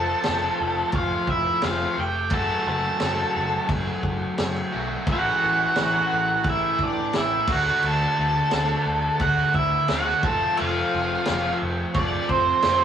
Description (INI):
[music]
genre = classic rock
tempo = 87 BPM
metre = 4/4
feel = straight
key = unclear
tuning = A4 = 440 Hz
[part]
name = octave-fuzz lead guitar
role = melody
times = 0.0-12.8 s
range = C5 to A5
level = -24 LUFS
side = right 2 dB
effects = distortion
[part]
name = octave-fuzz lead guitar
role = second line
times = 0.0-12.8 s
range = C4 to A4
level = -27 LUFS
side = right 1 dB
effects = distortion
[part]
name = distorted electric guitar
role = riff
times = 0.0-12.8 s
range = A2 to F#4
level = -30 LUFS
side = left 1 dB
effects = overdrive
[part]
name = overdriven semi-hollow guitar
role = riff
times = 0.0-12.8 s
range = A2 to F#4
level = -31 LUFS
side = left 1 dB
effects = none
[part]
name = growling picked electric bass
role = bass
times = 0.0-12.8 s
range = F1 to D2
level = -31 LUFS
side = left 1 dB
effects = overdrive
[part]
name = vintage drum kit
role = drums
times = 0.2-12.8 s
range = crash cymbal, kick drum, snare drum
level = -28 LUFS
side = equal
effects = none
[sound]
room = moderate studio reverb, RT60 0.5 s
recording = rough rehearsal-room recording, small room ambience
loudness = -20 LUFS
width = side -8 dB against mid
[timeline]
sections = 0.0-12.8 A section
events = none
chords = 0.0 F; 2.3 F#m; 5.1 A; 7.5 D; 10.2 F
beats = 0.26 0.94 1.63 | 2.32 3.01 3.70 4.39 | 5.08 5.76 6.46 7.14 | 7.83 8.52 9.21 9.90 | 10.59 11.28 11.96 12.65